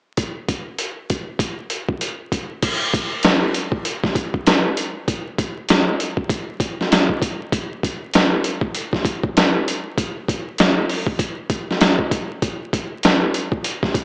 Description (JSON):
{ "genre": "hip hop", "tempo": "98 BPM", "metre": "4/4", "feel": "swing 60% on 16ths", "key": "none", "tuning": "none", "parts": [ { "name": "boom bap sampler-style drum kit", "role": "drums", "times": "0.2-14.0 s", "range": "crash cymbal, hi-hat, kick drum, snare drum", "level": "-18 LUFS", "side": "equal", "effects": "none" } ], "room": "wet spring reverb, RT60 2.0 s", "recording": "home recording on cassette, vinyl crackle, small speaker sound", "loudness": "-18 LUFS", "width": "side -34 dB against mid", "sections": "0.2-2.6 A section; 2.6-14.0 B section", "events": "none", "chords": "none", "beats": "| 0.17 0.79 1.40 2.01 | 2.62 3.24 3.85 4.46 | 5.07 5.68 6.30 6.91 | 7.52 8.13 8.75 9.36 | 9.97 10.58 11.20 11.81 | 12.42 13.03 13.64" }